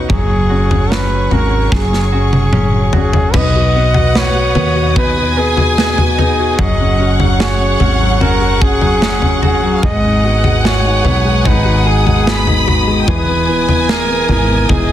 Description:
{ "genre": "pop ballad", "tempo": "74 BPM", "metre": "4/4", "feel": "straight", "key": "B major", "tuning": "A4 = 442 Hz", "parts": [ { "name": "warm baby grand piano", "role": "accompaniment", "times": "0.0-14.9 s", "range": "E3 to F#4", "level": "-20 LUFS", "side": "left 4 dB", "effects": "none" }, { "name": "warm studio string section", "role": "sustained chords", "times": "0.0-14.9 s", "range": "B3 to D#6", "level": "-23 LUFS", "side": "left 2 dB", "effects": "none" }, { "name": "direct-recorded clean electric guitar", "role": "arpeggios", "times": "0.0-14.9 s", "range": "G#2 to B4", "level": "-22 LUFS", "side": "right 7 dB", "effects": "spring reverb" }, { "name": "woody fretless electric bass", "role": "bass", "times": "0.0-14.9 s", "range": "E1 to D#2", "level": "-16 LUFS", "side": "equal", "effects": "lush chorus" }, { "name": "clear flugelhorn", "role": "melody", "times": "0.1-14.9 s", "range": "G#4 to D#5", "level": "-18 LUFS", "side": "equal", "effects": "none" }, { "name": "modern studio drum kit", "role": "drums", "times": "0.1-14.9 s", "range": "crash cymbal, kick drum, snare drum, toms", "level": "-16 LUFS", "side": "left 1 dB", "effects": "none" }, { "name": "warm studio violin section", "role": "second line", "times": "3.3-14.9 s", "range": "E#5 to B5", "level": "-20 LUFS", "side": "right 1 dB", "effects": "none" } ], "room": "light reverb, studio reverb", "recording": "dense, heavily limited modern master", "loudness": "-10 LUFS", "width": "side -11 dB against mid", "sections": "0.0-3.3 A section; 3.3-14.9 B section", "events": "drum fill 1.7-3.3", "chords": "0.1 F#sus2; 3.3 B; 6.6 F#sus2; 9.8 G#m7; 13.1 Emaj7" }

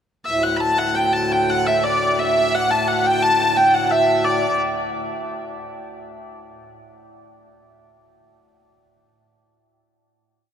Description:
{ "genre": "medieval dance", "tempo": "116 BPM (dotted quarters)", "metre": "6/8", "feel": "straight", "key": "D major", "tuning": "A4 = 440 Hz", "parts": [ { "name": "clear hurdy-gurdy", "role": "melody", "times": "0.3-4.6 s", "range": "D5 to B5", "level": "-18 LUFS", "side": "equal", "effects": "none" }, { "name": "hand-pumped harmonium", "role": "drone", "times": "0.3-4.5 s", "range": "D2 to A2", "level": "-25 LUFS", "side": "left 1 dB", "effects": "none" } ], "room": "wet cathedral reverb, RT60 5.9 s", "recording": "none", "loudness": "-16 LUFS", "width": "side -8 dB against mid", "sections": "0.2-4.4 A section; 4.4-5.4 final note", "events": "speeding up 0.2-5.4", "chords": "none" }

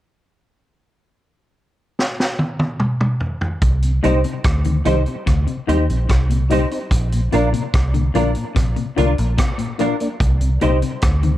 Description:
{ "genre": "roots reggae", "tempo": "73 BPM", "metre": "4/4", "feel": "straight", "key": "C minor", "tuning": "A4 = 438 Hz", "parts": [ { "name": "vintage drum kit", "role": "drums", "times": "2.0-11.4 s", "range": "hi-hat, kick drum, rim click, snare drum, toms", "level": "-20 LUFS", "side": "equal", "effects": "none" }, { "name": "vintage muted fingered electric bass", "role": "bass", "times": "3.6-11.4 s", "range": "Bb1 to Eb2", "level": "-18 LUFS", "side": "equal", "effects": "none" }, { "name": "mellow tonewheel organ", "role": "accompaniment", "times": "3.8-11.3 s", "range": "Bb2 to Eb4", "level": "-27 LUFS", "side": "left 2 dB", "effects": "chorus vibrato, slow rotary speaker, dub echo" }, { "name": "clean electric guitar", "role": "accompaniment", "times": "4.0-10.8 s", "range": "D4 to C5", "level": "-25 LUFS", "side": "right 3 dB", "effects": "ensemble chorus, dub echo" }, { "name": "electric guitar at the edge of break-up", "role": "arpeggios", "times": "4.0-11.4 s", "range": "Bb2 to Eb3", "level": "-25 LUFS", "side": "left 6 dB", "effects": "warbly pitch drift" }, { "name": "dark upright piano", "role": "stabs", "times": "4.0-10.8 s", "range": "D4 to Eb5", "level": "-24 LUFS", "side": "left 4 dB", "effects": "none" } ], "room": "light reverb", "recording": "dark, warm production", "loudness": "-16 LUFS", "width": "side -14 dB against mid", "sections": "0.3-3.6 A section; 3.6-11.4 B section", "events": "drum fill 2.0-3.6", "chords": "0.3 N.C.; 3.6 Cm; 6.9 Bb; 10.2 Cm" }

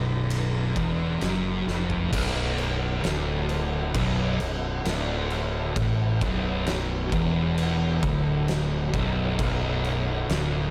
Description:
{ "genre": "stoner and doom metal", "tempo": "66 BPM", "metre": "4/4", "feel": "straight", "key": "B minor", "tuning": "A4 = 440 Hz", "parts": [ { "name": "thick fuzz guitar", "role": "riff", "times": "0.0-10.7 s", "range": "B1 to A2", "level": "-28 LUFS", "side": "equal", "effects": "distortion" }, { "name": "fuzz fingered electric bass", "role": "bass", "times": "0.0-10.7 s", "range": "B0 to A1", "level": "-32 LUFS", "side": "equal", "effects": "overdrive" }, { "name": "oversized low-tuned drum kit", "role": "drums", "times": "0.3-10.5 s", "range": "crash cymbal, kick drum, ride cymbal, snare drum, toms", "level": "-32 LUFS", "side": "equal", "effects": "none" } ], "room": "light reverb, small room ambience", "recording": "none", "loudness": "-26 LUFS", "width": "mono", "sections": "0.0-2.1 A section; 2.1-10.7 B section", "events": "drum fill 1.7-2.1", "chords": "0.0 B5; 2.1 Bm" }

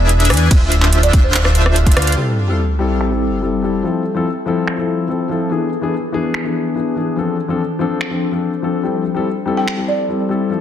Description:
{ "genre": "future bass", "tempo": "144 BPM", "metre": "4/4", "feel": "half-time", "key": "A minor", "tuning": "A4 = 437 Hz", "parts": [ { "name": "buzzing marimba with medium mallets", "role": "melody", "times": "0.0-1.7, 9.6-10.0 s", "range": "C5 to G5", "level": "-22 LUFS", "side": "right 2 dB", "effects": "sidechain pumping, digital delay" }, { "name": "big bright polysynth", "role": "riff", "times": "0.0-2.1 s", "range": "D3 to G#5", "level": "-20 LUFS", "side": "equal", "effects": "wide subtle chorus, sidechain pumping, digital delay" }, { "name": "fat analog bass", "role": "bass", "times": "0.0-2.2 s", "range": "D1 to E2", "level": "-14 LUFS", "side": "equal", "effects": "sidechain pumping" }, { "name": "dubstep drum kit", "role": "drums", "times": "0.1-9.8 s", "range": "finger snaps, handclaps, hi-hat, ride cymbal, rim click", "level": "-21 LUFS", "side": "right 1 dB", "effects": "low-pass filter on hats, soft clipping on snare, low-pass filter on snare, low-pass filter on cymbals, low-pass filter on room" }, { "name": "electronic kick drum", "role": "drums", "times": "0.5-1.9 s", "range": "none", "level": "-11 LUFS", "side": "equal", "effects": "none" }, { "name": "dark grand piano", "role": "accompaniment", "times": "2.2-10.6 s", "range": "E3 to A4", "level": "-18 LUFS", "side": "left 4 dB", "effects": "sidechain pumping, digital delay" }, { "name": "ethereal airy pad", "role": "sustained chords", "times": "2.9-10.6 s", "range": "E3 to C5", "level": "-24 LUFS", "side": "equal", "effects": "ensemble chorus, built-in reverb, phaser, vintage 12-bit sampler grit, sidechain pumping" }, { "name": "sub drop", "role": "sound effects", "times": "2.2-3.8 s", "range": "none", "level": "-19 LUFS", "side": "right 1 dB", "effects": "none" } ], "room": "light reverb", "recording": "dense, heavily limited modern master", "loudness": "-14 LUFS", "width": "side -10 dB against mid", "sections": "0.0-2.2 A section; 2.2-10.6 B section", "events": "drop 0.0-2.2; drum fill 2.0; band accent 2.0; impact 2.2-3.8; filter sweep on drum 2.2-10.6; filter sweep on ambient pad 2.2-10.6", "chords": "0.0 E7; 0.5 Dm7; 2.2 Am7; 3.8 Fmaj7; 5.5 E7; 7.2 Dm7; 8.8 Am7" }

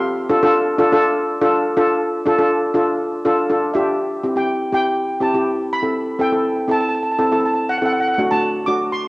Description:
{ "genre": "calypso", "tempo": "122 BPM", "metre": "4/4", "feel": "straight", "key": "unclear", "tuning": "A4 = 440 Hz", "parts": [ { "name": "steel pan", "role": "melody", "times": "0.0-9.1 s", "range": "A4 to D6", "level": "-21 LUFS", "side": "right 1 dB", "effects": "cassette tape" }, { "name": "steel pan", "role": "accompaniment", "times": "0.0-9.0 s", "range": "A3 to A4", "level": "-16 LUFS", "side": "equal", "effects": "cassette tape" } ], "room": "wet spring reverb, RT60 2.5 s", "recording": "home recording on cassette", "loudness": "-15 LUFS", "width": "side -24 dB against mid", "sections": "0.0-2.0 A section; 2.0-4.0 B section; 4.0-9.1 C section", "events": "none", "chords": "0.0 Dm; 4.0 C; 6.0 Am/C; 7.9 D" }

